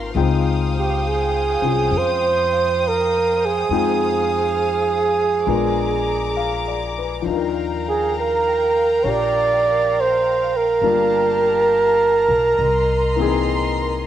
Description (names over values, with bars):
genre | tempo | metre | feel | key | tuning
jazz ballad | 68 BPM | 4/4 | swing 66% on 8ths | unclear | A4 = 440 Hz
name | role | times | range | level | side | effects
warm concert grand piano | accompaniment | 0.0-14.1 s | E3 to G5 | -25 LUFS | left 10 dB | cassette tape, plate reverb
warm studio string section | sustained chords | 0.0-14.1 s | G4 to Eb6 | -27 LUFS | left 1 dB | cassette tape, plate reverb
upright bass | bass | 0.0-14.1 s | G1 to F2 | -26 LUFS | left 2 dB | none
mellow flugelhorn | melody | 0.8-14.1 s | G4 to D5 | -18 LUFS | right 3 dB | cassette tape, plate reverb
room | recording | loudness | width
wet studio reverb, RT60 0.5 s | home recording on cassette | -16 LUFS | side -11 dB against mid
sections
0.0-14.1 A section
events
none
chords
0.1 Dbmaj9#11; 3.7 Fm7; 5.5 Bb7b9; 7.3 Ebmaj9; 10.8 Gm9; 12.6 C7alt